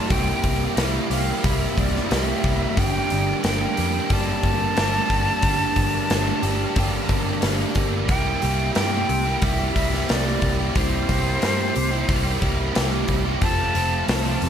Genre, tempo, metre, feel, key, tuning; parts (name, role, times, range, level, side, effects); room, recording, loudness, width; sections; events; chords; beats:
rock, shoegaze and dream pop; 90 BPM; 4/4; straight; C mixolydian; A4 = 440 Hz
breathy jazz flute; melody; 0.0-14.5 s; C5 to A5; -27 LUFS; equal; slapback echo
overdriven electric guitar; riff; 0.0-14.5 s; F2 to G4; -24 LUFS; right 1 dB; analog chorus
vintage muted picked electric bass; bass; 0.1-14.5 s; F1 to G2; -25 LUFS; equal
big rock drum kit; drums; 0.1-14.5 s; hi-hat, kick drum, snare drum; -24 LUFS; equal
light reverb, small room ambience; -19 LUFS; side -8 dB against mid
0.0-8.1 A section; 8.1-14.5 B section
0.0 C7; 2.8 Gmadd9; 8.1 C7; 13.4 F
| 0.10 0.77 1.43 2.10 | 2.77 3.43 4.10 4.76 | 5.43 6.09 6.76 7.42 | 8.09 8.75 9.42 10.09 | 10.75 11.42 12.09 12.75 | 13.42 14.09